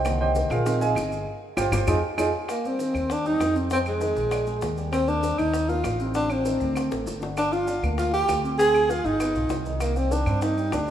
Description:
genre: Afro-Cuban jazz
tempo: 196 BPM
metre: 4/4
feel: straight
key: C minor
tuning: A4 = 444 Hz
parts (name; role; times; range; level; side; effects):
- warm upright piano; accompaniment; 0.0-10.9 s; C3 to Ab5; -29 LUFS; right 2 dB; none
- upright bass; bass; 0.0-10.9 s; G1 to G2; -28 LUFS; equal; none
- maracas; percussion; 0.0-10.9 s; none; -43 LUFS; right 3 dB; none
- bongos; percussion; 0.1-10.9 s; none; -36 LUFS; left 6 dB; none
- claves; percussion; 0.1-10.9 s; none; -38 LUFS; right 2 dB; none
- warm tenor saxophone; melody; 2.5-10.9 s; Ab3 to Ab4; -24 LUFS; equal; none
room: moderate lush hall reverb, RT60 2.3 s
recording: rough home demo mix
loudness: -22 LUFS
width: side -10 dB against mid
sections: 0.0-2.5 A section; 2.5-10.9 B section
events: upright piano solo 0.0-2.5; band accent 1.3-2.5; drum fill 6.9-7.4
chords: 0.1 Cm7; 0.7 Bb7sus4; 1.3 G7sus4; 1.9 Fm7; 2.5 Cm; 3.7 Fm7; 4.3 Bb7; 4.9 Ebmaj13; 6.1 Adim; 6.8 D5; 7.4 Gm7; 8.6 Dm7b5; 9.2 G7b13; 9.8 Cmadd9

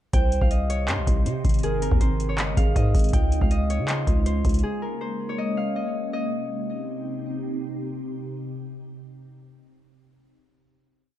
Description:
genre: hip hop, trap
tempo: 160 BPM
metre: 4/4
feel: half-time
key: C phrygian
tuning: A4 = 440 Hz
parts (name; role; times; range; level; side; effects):
- Celtic harp; melody; 0.1-7.9 s; Ab4 to G5; -31 LUFS; left 3 dB; digital delay
- hollow clarinet-like synth lead; second line; 0.1-3.1 s; Ab4 to C5; -33 LUFS; right 7 dB; chorus, digital delay
- glassy FM pad; sustained chords; 0.7-9.5 s; C3 to G4; -31 LUFS; equal; ensemble chorus, built-in reverb, phaser
- growling 808-style bass; bass; 0.1-4.6 s; G1 to Db3; -24 LUFS; equal; none
- booming analog drum machine; drums; 0.1-4.6 s; handclaps, hi-hat, kick drum; -22 LUFS; equal; overdrive, vintage 12-bit sampler grit
room: light reverb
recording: dark, warm production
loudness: -22 LUFS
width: side -12 dB against mid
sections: 0.1-6.1 hook; 6.1-9.1 final chord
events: none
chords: 0.1 Cm; 1.6 Ab; 3.1 Dbadd9; 4.6 Bbm7; 6.1 Cm

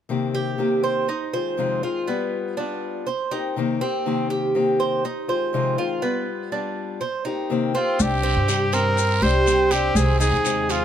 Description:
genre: latin, Cuban son and guajira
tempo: 122 BPM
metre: 4/4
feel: straight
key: C minor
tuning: A4 = 440 Hz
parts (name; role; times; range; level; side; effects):
- picked acoustic archtop guitar; accompaniment; 0.1-10.8 s; F2 to Ab4; -25 LUFS; left 6 dB; none
- Cuban tres; arpeggios; 0.3-10.8 s; B3 to C5; -24 LUFS; right 4 dB; none
- clear trumpet; melody; 7.8-10.8 s; F4 to C5; -22 LUFS; right 1 dB; none
- upright bass; bass; 8.0-10.8 s; C2 to G2; -22 LUFS; equal; none
- guiro; percussion; 8.0-10.8 s; none; -32 LUFS; right 6 dB; none
- maracas; percussion; 8.0-10.8 s; none; -31 LUFS; left 9 dB; none
room: light reverb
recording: none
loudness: -20 LUFS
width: side -9 dB against mid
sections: 0.1-8.0 A section; 8.0-10.8 B section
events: none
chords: 0.1 Cm7; 1.1 Fm7; 2.1 G7; 3.1 Cm7; 5.0 Fm7; 6.0 G7; 7.0 Cm7; 8.0 Csus2; 10.0 Ab/C

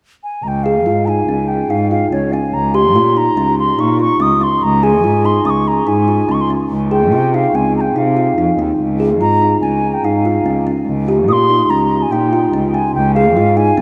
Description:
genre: contemporary instrumental, chamber music in an uneven meter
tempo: 144 BPM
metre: 5/4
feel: straight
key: Db lydian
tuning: A4 = 439 Hz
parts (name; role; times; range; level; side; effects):
- wooden flute; melody; 0.2-13.8 s; Db5 to Eb6; -19 LUFS; equal; none
- muted cello; bass; 0.4-13.8 s; Db2 to C3; -20 LUFS; equal; none
- kalimba; arpeggios; 0.7-13.8 s; C4 to Ab4; -18 LUFS; equal; none
room: wet cathedral reverb, RT60 6.3 s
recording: in a vast, echoing space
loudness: -14 LUFS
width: mono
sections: 0.4-13.8 A section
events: none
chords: 0.4 Db; 2.5 Eb7(no3)/Db; 4.6 Db; 6.7 F7(no3)/Db; 8.8 Db; 10.9 Eb7/Db; 13.0 Db

